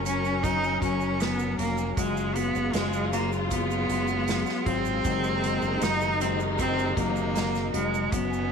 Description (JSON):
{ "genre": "pop ballad", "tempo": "78 BPM", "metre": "4/4", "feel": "straight", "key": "unclear", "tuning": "A4 = 440 Hz", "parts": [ { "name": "bright cello", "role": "melody", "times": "0.0-8.5 s", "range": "G#3 to D#4", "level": "-28 LUFS", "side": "right 2 dB", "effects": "slapback echo" }, { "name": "felt-muted upright piano", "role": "accompaniment", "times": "0.0-8.5 s", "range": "F#3", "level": "-32 LUFS", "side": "left 11 dB", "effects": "none" }, { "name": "warm studio string section", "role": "sustained chords", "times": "0.0-8.5 s", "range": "B2 to A#4", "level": "-31 LUFS", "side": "left 1 dB", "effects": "none" }, { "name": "modern bright fingered electric bass", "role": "bass", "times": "0.0-8.5 s", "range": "E#1 to G#1", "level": "-32 LUFS", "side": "right 2 dB", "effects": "none" }, { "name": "unplugged drum kit", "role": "drums", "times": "0.1-8.3 s", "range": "hi-hat, kick drum, snare drum", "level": "-33 LUFS", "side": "right 2 dB", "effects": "none" }, { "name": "egg shaker", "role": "percussion", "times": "0.1-8.5 s", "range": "none", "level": "-47 LUFS", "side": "right 18 dB", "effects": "none" } ], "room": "moderate echo chamber reverb, RT60 1.7 s, small room ambience", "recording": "1960s-style stereo with parts hard left and right", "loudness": "-24 LUFS", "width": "side -6 dB against mid", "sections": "0.0-8.5 A section", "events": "none", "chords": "0.0 F#; 2.0 C#7/F#; 5.0 G#add9/F#", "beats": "0.43 1.20 | 1.97 2.74 3.51 4.28 | 5.05 5.82 6.59 7.36 | 8.13" }